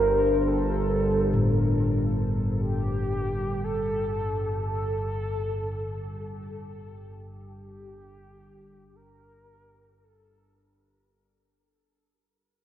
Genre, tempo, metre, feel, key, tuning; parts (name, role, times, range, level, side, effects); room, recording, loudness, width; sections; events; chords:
dark ambient drone; free time; G minor; A4 = 440 Hz
mellow horn-like synth lead; melody; 0.0-10.9 s; G4 to Bb4; -28 LUFS; equal; phaser, analog chorus, ping-pong delay
gamelan-type bossed gongs; arpeggios; 0.0-7.7 s; A2 to D4; -30 LUFS; left 1 dB
analog drone; drone; 0.0-11.2 s; G1 to G2; -28 LUFS; equal; chorus
wet huge ambient reverb, RT60 8.5 s; worn, warbling old tape, cassette tape, warbly pitch drift; -24 LUFS; side -11 dB against mid
0.0-11.1 A section
fade-out 0.0-11.1
0.0 G5